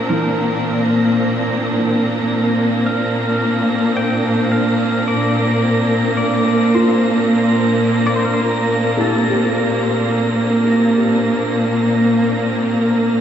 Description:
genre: ambient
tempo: 54 BPM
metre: 4/4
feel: straight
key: Bb lydian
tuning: A4 = 438 Hz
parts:
  - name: pedal steel guitar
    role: melody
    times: 0.0-11.2 s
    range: A4 to G5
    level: -26 LUFS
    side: left 2 dB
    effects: diffuse ambient delay
  - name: rich symphonic string section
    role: sustained chords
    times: 0.0-13.2 s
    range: Bb2 to D4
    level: -15 LUFS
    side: equal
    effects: none
  - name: felt-muted upright piano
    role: arpeggios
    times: 0.0-13.2 s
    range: E3 to G4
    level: -26 LUFS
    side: left 2 dB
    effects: wide subtle chorus, diffuse ambient delay
  - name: wind-like tuned noise texture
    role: texture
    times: 0.0-13.2 s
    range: Bb6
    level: -27 LUFS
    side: right 2 dB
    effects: built-in reverb, ensemble chorus
room: wet lush hall reverb, RT60 2.9 s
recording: dreamy mix soaked in reverb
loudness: -14 LUFS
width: side -9 dB against mid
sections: 0.0-13.2 A section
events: fade-in on pedal steel guitar 0.0-13.2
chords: 0.0 Bb

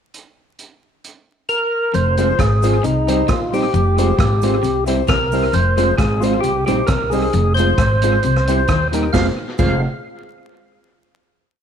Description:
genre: ska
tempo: 133 BPM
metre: 4/4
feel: swing 54% on 8ths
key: F minor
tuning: A4 = 440 Hz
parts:
  - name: swinging big-band drum kit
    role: drums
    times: 0.1-9.7 s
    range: crash cymbal, hi-hat, kick drum, rim click, snare drum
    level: -22 LUFS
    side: right 1 dB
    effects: tape echo
  - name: percussive tonewheel organ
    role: melody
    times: 1.5-9.8 s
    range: Eb4 to F5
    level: -20 LUFS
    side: equal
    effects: overdrive, slow rotary speaker
  - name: electric guitar at the edge of break-up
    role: riff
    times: 1.9-8.8 s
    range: F2 to Eb3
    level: -26 LUFS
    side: left 6 dB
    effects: tape echo
  - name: upright bass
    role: bass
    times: 1.9-9.8 s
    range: F1 to Eb2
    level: -19 LUFS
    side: equal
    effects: none
  - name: cabasa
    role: percussion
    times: 1.9-9.8 s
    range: none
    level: -44 LUFS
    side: right 11 dB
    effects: none
  - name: mellow electric guitar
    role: accompaniment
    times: 2.2-9.7 s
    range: G3 to F4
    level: -24 LUFS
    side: right 9 dB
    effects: none
  - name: clear upright piano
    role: stabs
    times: 2.2-9.8 s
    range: Eb4 to C5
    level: -24 LUFS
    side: left 9 dB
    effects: none
room: moderate plate reverb, RT60 1.9 s, studio ambience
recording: 1960s-style stereo with parts hard left and right, vinyl crackle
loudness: -14 LUFS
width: side -8 dB against mid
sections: 0.1-1.9 pickup bar; 1.9-9.1 head; 9.1-10.9 final chord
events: none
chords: 0.1 N.C.; 1.9 Fm; 2.8 Cm; 3.7 Fm; 4.6 C; 5.5 Fm; 6.4 Cm; 7.3 Fm; 8.2 C; 8.7 Eb; 9.1 Fm

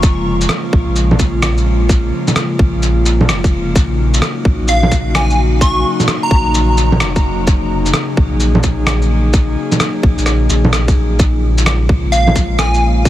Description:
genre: future garage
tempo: 129 BPM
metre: 4/4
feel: swing 65% on 16ths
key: unclear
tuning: A4 = 435 Hz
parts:
  - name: airy breathy pad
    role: sustained chords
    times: 0.0-13.1 s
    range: Db3 to Ab4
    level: -19 LUFS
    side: left 2 dB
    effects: chorus, sidechain pumping
  - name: warm sub bass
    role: bass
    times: 0.0-13.1 s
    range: F1 to Bb1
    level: -15 LUFS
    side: equal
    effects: sidechain pumping
  - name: electronic kick drum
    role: drums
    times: 0.0-13.1 s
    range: none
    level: -12 LUFS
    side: equal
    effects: overdrive
  - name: electronic shaker, rim click and bongos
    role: drums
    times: 0.0-13.1 s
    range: none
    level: -18 LUFS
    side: right 1 dB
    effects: none
  - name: plucky unison lead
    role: melody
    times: 4.7-6.5, 12.1-12.8 s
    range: F5 to Db6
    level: -19 LUFS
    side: equal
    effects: tape echo
room: light reverb, digital ambience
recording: heavily compressed radio sound, multiband compression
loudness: -11 LUFS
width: side -13 dB against mid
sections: 0.0-13.1 A section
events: none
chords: 0.0 Bbm7; 3.8 Ebm7; 11.2 Bbm7

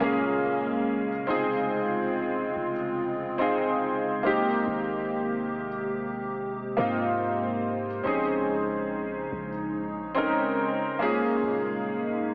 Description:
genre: contemporary R&B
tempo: 71 BPM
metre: 4/4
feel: straight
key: unclear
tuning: A4 = 441 Hz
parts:
  - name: warm concert grand piano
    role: accompaniment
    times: 0.0-12.3 s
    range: Bb3 to Bb4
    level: -29 LUFS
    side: equal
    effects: analog chorus
  - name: hollow soft pad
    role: sustained chords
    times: 0.0-12.3 s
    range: C3 to C5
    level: -34 LUFS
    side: equal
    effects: chorus
  - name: long sustained 808-style bass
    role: bass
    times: 0.0-12.3 s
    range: Eb1 to Ab2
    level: -44 LUFS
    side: equal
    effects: none
room: wet church reverb, RT60 3.2 s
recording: dreamy mix soaked in reverb, AM radio sound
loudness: -28 LUFS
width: mono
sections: 0.0-12.3 A section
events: none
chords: 0.0 Eb7sus4; 1.3 Dbmaj7/F; 4.2 Abmaj9; 8.0 Bbm11; 11.0 Eb7sus4

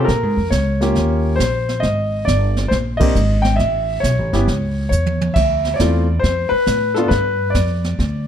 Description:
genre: jazz piano trio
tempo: 137 BPM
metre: 4/4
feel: swing 66% on 8ths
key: unclear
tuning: A4 = 438 Hz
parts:
  - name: clear concert grand piano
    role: melody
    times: 0.0-8.3 s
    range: A3 to G5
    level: -19 LUFS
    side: left 1 dB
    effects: plate reverb
  - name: upright bass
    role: bass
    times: 0.0-8.3 s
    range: G1 to Bb2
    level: -18 LUFS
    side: equal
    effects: none
  - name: jazz brush drum kit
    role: drums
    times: 0.1-8.3 s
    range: brushed snare drum, crash cymbal, hi-hat, kick drum, ride cymbal, snare drum, toms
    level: -23 LUFS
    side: right 2 dB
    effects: none
room: light reverb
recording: dark, warm production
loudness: -15 LUFS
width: side -9 dB against mid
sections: 0.0-8.3 A section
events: band accent 2.9; drum fill 4.9-5.4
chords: 0.1 Bbm7; 1.0 Eb7; 1.8 Abmaj7sus2; 3.6 A; 5.4 Dm7; 7.1 G7

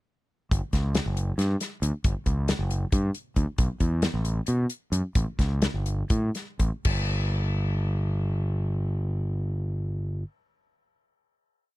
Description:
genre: math rock and midwest emo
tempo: 232-275 BPM (eighths)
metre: 7/8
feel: straight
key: G lydian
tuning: A4 = 440 Hz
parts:
  - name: growling fingered electric bass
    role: bass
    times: 0.5-10.2 s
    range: F#1 to B2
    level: -26 LUFS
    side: equal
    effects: overdrive
  - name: modern studio drum kit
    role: drums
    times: 0.5-7.0 s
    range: crash cymbal, hi-hat, kick drum, snare drum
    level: -27 LUFS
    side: equal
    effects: none
room: little or no reverb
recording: dry, close 1970s-style studio recording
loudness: -24 LUFS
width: side -18 dB against mid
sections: 0.5-6.9 A section; 6.9-10.5 final note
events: slowing down 3.6-6.9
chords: none

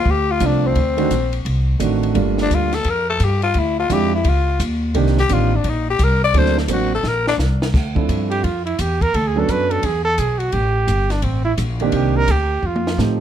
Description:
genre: jazz, small-group swing and bop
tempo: 172 BPM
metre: 4/4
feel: swing 64% on 8ths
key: D minor from 7.7 s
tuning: A4 = 440 Hz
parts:
  - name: growling tenor saxophone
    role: melody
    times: 0.0-7.4 s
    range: C4 to D5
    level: -20 LUFS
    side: left 5 dB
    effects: plate reverb
  - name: upright bass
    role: bass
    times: 0.0-13.2 s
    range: G1 to A2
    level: -19 LUFS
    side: equal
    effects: none
  - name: compact cocktail drum kit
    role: drums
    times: 0.1-13.1 s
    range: crash cymbal, hi-hat, kick drum, ride cymbal, snare drum, toms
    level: -26 LUFS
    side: left 1 dB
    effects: none
  - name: warm grand piano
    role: accompaniment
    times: 0.4-13.2 s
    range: Eb3 to C5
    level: -20 LUFS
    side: right 7 dB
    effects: none
  - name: warm trumpet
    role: second line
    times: 8.3-13.0 s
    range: C4 to B4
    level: -20 LUFS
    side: right 3 dB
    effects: none
room: light reverb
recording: dark, warm production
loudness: -16 LUFS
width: side -10 dB against mid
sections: 0.0-7.7 A section; 7.7-13.2 A section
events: tenor saxophone solo 0.0-7.7; drum fill 7.0-7.7, 12.6-13.0; trumpet solo 7.7-13.2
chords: 0.0 Dm7; 0.8 D7b9; 2.2 Gm9; 3.6 Dm7b5; 4.3 C#add9; 5.0 Cm9; 6.3 D7b13; 7.7 Dm7; 9.1 Bm7; 9.8 E5; 10.5 A7(no3); 11.9 Cm9; 12.6 F7

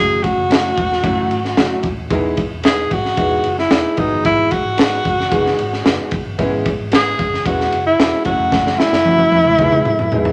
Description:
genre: uptempo 1960s-style soul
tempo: 112 BPM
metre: 4/4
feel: straight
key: unclear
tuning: A4 = 440 Hz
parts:
  - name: breathy tenor saxophone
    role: melody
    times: 0.0-10.3 s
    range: D#4 to G#4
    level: -19 LUFS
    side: equal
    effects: none
  - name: warm upright piano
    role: accompaniment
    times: 0.0-10.3 s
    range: F#3 to B4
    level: -24 LUFS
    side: equal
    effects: none
  - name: vintage muted fingered electric bass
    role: bass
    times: 0.0-10.2 s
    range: D#1 to G#1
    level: -30 LUFS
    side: equal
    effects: none
  - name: crunchy breakbeat drum kit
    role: drums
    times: 0.2-10.3 s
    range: kick drum, ride cymbal, snare drum, toms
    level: -21 LUFS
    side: equal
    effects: none
room: moderate large studio reverb, RT60 1.3 s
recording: none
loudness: -16 LUFS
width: mono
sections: 0.0-10.3 A section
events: drum fill 8.5-10.3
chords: 0.0 F#m7; 2.1 Emaj7; 4.0 G#m7; 6.4 C#m7; 8.3 F#m7; 9.6 Emaj7

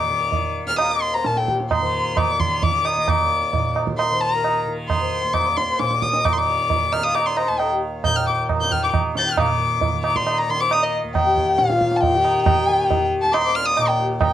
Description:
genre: indian classical, Hindustani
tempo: 134 BPM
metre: 7/4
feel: straight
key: Eb raga yaman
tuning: A4 = 439 Hz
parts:
  - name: dark violin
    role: melody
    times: 0.0-14.3 s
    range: Eb5 to A6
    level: -20 LUFS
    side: left 2 dB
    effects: none
  - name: pedal harmonium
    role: second line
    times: 0.0-14.1 s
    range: F4 to G5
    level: -26 LUFS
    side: left 4 dB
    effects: none
  - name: tanpura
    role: drone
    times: 0.0-14.3 s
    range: Eb2 to Eb3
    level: -28 LUFS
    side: right 1 dB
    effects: none
  - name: tabla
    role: percussion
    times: 0.3-14.3 s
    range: none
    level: -23 LUFS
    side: right 5 dB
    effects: none
room: light reverb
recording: dark, warm production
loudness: -17 LUFS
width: side -11 dB against mid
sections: 0.0-9.4 A section; 9.4-14.3 B section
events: speeding up 0.0-14.3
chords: none

